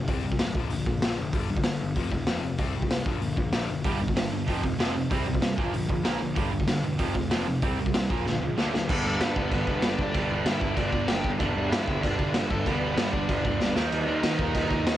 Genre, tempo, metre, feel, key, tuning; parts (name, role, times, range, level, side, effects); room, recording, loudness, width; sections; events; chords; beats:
punk rock; 191 BPM; 4/4; straight; G major from 8.9 s; A4 = 441 Hz
overdriven electric guitar; riff; 0.0-15.0 s; F2 to Eb4; -32 LUFS; left 8 dB
fuzz picked electric bass; bass; 0.0-15.0 s; E1 to Eb3; -32 LUFS; equal; overdrive
raw garage drum kit; drums; 0.1-14.9 s; crash cymbal, hi-hat, kick drum, snare drum; -27 LUFS; equal; cassette tape
biting overdriven guitar; riff; 3.8-15.0 s; F2 to Eb4; -31 LUFS; right 8 dB
nasal lead guitar with a parked wah; melody; 9.1-15.0 s; A3 to G5; -33 LUFS; equal; overdrive, cassette tape
little or no reverb; home recording on cassette; -24 LUFS; side -12 dB against mid
0.0-8.9 A section; 8.9-15.0 B section
drum fill 8.3-8.9, 13.6-13.9
0.1 C5; 0.5 Bb; 1.3 G5; 2.0 F5; 2.6 C5; 3.1 Bb; 3.9 G5; 4.5 F5; 5.1 C5; 5.6 Bb; 6.4 G5; 7.0 F5; 7.6 C5; 8.1 Bb; 8.6 D; 8.9 G; 13.8 Eb
| 0.07 0.39 0.70 1.02 | 1.33 1.65 1.96 2.28 | 2.59 2.91 3.22 3.54 | 3.85 4.17 4.48 4.79 | 5.11 5.42 5.74 6.05 | 6.37 6.68 7.00 7.31 | 7.63 7.94 8.26 8.57 | 8.89 9.20 9.52 9.83 | 10.14 10.46 10.77 11.09 | 11.40 11.72 12.03 12.35 | 12.66 12.98 13.29 13.61 | 13.92 14.23 14.55 14.86